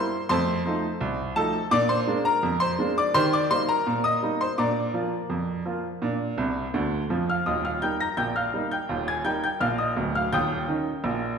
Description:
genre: ragtime piano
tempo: 84 BPM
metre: 2/4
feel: straight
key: Eb major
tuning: A4 = 440 Hz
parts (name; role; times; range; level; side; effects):
- bright baby grand piano; solo; 0.0-11.4 s; D1 to Bb6; -23 LUFS; equal; none
room: wet recital hall reverb, RT60 1.8 s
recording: recorded in a church or concert hall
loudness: -23 LUFS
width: side -6 dB against mid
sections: 0.0-7.5 A section; 7.5-11.4 B section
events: grand piano fill 6.4-7.5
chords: 0.3 F7; 1.7 Bb7; 3.1 Eb; 4.6 Bb; 7.5 Eb; 10.3 Eb7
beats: | 0.30 1.01 | 1.72 2.43 | 3.14 3.86 | 4.58 5.30 | 6.02 6.74 | 7.46 8.18 | 8.89 9.61 | 10.32 11.04

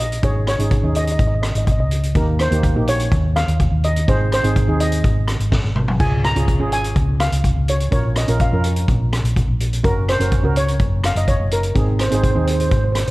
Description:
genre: calypso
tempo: 125 BPM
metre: 4/4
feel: straight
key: unclear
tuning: A4 = 440 Hz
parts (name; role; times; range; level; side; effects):
- steel pan; melody; 0.0-13.1 s; Bb4 to Bb5; -23 LUFS; equal; none
- hollow-body short-scale fingered electric bass; bass; 0.0-13.1 s; Gb1 to F2; -19 LUFS; equal; none
- street-band drum kit; drums; 0.1-13.1 s; crash cymbal, hi-hat, kick drum, rim click, snare drum, toms; -20 LUFS; equal; none
- steel pan; accompaniment; 0.2-12.9 s; Bb3 to Bb4; -25 LUFS; right 2 dB; none
room: little or no reverb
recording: none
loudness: -15 LUFS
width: side -20 dB against mid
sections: 0.0-13.1 A section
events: drum fill 5.5-6.0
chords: 0.2 Absus4; 2.2 Eb7; 4.1 Ab; 6.0 Db; 7.9 Bbm; 9.8 Gb; 11.8 Ab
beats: | 0.23 0.71 1.19 1.68 | 2.16 2.64 3.12 3.60 | 4.08 4.56 5.04 5.52 | 6.00 6.48 6.96 7.44 | 7.92 8.40 8.88 9.36 | 9.84 10.32 10.80 11.28 | 11.76 12.24 12.72

